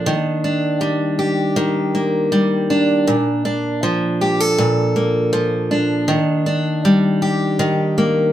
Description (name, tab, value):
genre	pop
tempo	80 BPM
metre	4/4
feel	straight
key	unclear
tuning	A4 = 439 Hz
part	picked steel-string acoustic guitar	solo	0.0-8.3 s	Bb2 to A4	-15 LUFS	equal	none
room	wet studio reverb, RT60 0.7 s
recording	band playing live in one room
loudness	-15 LUFS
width	side -12 dB against mid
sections	0.0-8.3 A section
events	none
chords	0.1 Ebmaj7; 3.1 Bbmaj7; 6.1 Ebmaj7